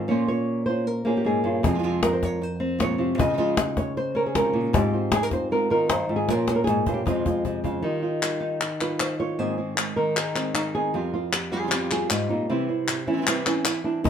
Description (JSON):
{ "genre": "flamenco", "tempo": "155 BPM", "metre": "4/4", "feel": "straight", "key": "F minor", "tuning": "A4 = 440 Hz", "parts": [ { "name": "flamenco guitar", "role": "melody", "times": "0.0-14.1 s", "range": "F2 to Eb5", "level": "-24 LUFS", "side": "equal", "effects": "none" }, { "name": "flamenco guitar", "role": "stabs", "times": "0.0-14.1 s", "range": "F2 to C5", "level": "-29 LUFS", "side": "right 4 dB", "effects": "none" }, { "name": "cajon", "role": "percussion", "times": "1.6-7.7, 14.1 s", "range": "none", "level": "-26 LUFS", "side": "left 3 dB", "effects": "none" }, { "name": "palmas hand claps", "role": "percussion", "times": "8.2-13.8 s", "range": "none", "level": "-26 LUFS", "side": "left 3 dB", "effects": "none" } ], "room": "moderate studio reverb, RT60 0.7 s", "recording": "minimal, uncompressed stereo recording", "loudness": "-22 LUFS", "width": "side -8 dB against mid", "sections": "0.0-7.8 A section; 7.8-14.1 B section", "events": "drum fill 6.3-7.8; nylon-string guitar solo 7.8-14.1", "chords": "0.1 Bbmadd9; 1.6 Fm; 3.2 Dbadd9; 4.7 Ab6; 6.3 Bbmadd9; 7.1 Fm; 7.8 Ebadd9; 9.4 Abadd9; 10.9 Fsus2; 12.5 C", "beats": "| 0.10 0.48 0.87 1.25 | 1.64 2.03 2.42 2.80 | 3.19 3.58 3.96 4.35 | 4.74 5.12 5.51 5.90 | 6.28 6.67 7.06 7.45 | 7.83 8.22 8.61 9.00 | 9.39 9.78 10.16 10.55 | 10.94 11.33 11.72 12.10 | 12.49 12.88 13.27 13.65 | 14.04" }